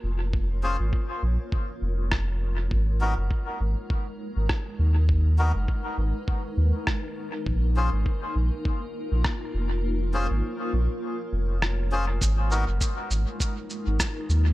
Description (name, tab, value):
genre	ambient dub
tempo	101 BPM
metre	4/4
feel	swing 56% on 16ths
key	G# dorian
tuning	A4 = 442 Hz
part	granular cloud pad	sustained chords	0.0-14.5 s	G#3 to C#5	-35 LUFS	left 1 dB	built-in reverb
part	warm sub bass	bass	0.0-14.5 s	E#1 to D#2	-23 LUFS	equal	none
part	electronic kick drum	drums	0.3-14.1 s	none	-27 LUFS	equal	studio reverb
part	melodica	stabs	0.6-12.6 s	B3 to B#4	-33 LUFS	left 2 dB	dub echo
part	electronic rim click and cabasa	drums	2.1-14.4 s	none	-32 LUFS	equal	studio reverb, dub echo
room	little or no reverb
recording	none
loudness	-24 LUFS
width	side -17 dB against mid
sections	0.0-14.5 A section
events	fade-in on ambient pad 0.0-14.5; kick drops out 9.8-12.2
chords	0.0 A#m; 2.7 G#m; 7.5 A#m7; 12.2 G#m